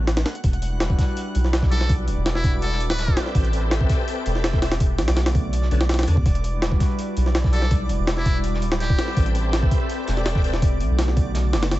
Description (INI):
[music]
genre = drum and bass, jungle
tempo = 165 BPM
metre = 4/4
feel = straight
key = E minor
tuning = A4 = 440 Hz
[part]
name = soft dub sub bass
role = bass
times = 0.0-11.8 s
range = D1 to E2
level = -22 LUFS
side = equal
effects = none
[part]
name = backwards swelling texture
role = texture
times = 0.0-11.8 s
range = D5 to F#6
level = -35 LUFS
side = equal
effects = built-in reverb
[part]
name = jungle sampler-style drum kit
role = drums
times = 0.1-11.8 s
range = hi-hat, kick drum, snare drum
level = -21 LUFS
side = equal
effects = small room ambience
[part]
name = warbly tape-like pad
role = sustained chords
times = 0.4-11.8 s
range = C#3 to E5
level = -30 LUFS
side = equal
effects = chorus, built-in reverb
[part]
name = crunchy breakbeat drum kit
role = drums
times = 0.4-11.8 s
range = hi-hat, snare drum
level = -38 LUFS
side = right 1 dB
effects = none
[part]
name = trumpet with metal mute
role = melody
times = 1.7-3.3, 7.5-9.2 s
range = E4 to B4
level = -32 LUFS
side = equal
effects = dub echo
[part]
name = bright tonewheel organ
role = stabs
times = 1.7-10.5 s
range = D3 to G5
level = -32 LUFS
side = left 3 dB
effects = chorus vibrato, slow rotary speaker, dub echo
[sound]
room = small room ambience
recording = nothing above 8.0 kHz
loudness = -19 LUFS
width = side -16 dB against mid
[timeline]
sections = 0.0-11.8 A section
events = break 0.0-0.4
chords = 0.4 Em9; 3.4 Am9; 4.8 Bm9; 6.3 Em9; 9.2 Am9; 10.6 Bm9